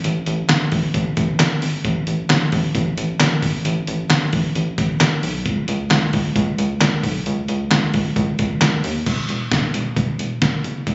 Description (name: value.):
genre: synth-pop.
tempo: 133 BPM.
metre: 4/4.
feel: straight.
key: unclear.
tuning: A4 = 441 Hz.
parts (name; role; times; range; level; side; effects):
rubbery square bass; bass; 0.0-10.9 s; E1 to D#2; -21 LUFS; equal; none.
trip hop sampler-style drum kit; drums; 0.0-10.9 s; crash cymbal, handclaps, hi-hat, kick drum, snare drum; -19 LUFS; equal; none.
room: light reverb.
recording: recorded on a phone in the room, club reverb, compression, nothing above 7.9 kHz.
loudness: -17 LUFS.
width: side -26 dB against mid.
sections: 0.0-9.1 A section; 9.1-10.9 B section.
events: none.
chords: none.